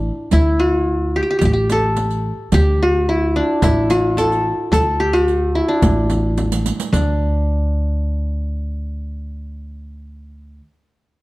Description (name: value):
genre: Arabic maqam ensemble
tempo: 109 BPM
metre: 4/4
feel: straight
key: D maqam rast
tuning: A4 = 440 Hz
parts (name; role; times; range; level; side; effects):
- qanun; melody; 0.0-10.6 s; D4 to A4; -18 LUFS; equal; none
- upright bass; bass; 0.0-10.6 s; A1 to D2; -19 LUFS; equal; none
- frame drum; percussion; 0.3-7.2 s; none; -22 LUFS; equal; none
- riq; percussion; 0.3-7.2 s; none; -28 LUFS; right 6 dB; none
room: light reverb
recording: dark, warm production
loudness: -15 LUFS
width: side -19 dB against mid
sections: 0.0-6.9 A section; 6.9-9.1 B section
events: drum fill 6.4-6.9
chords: none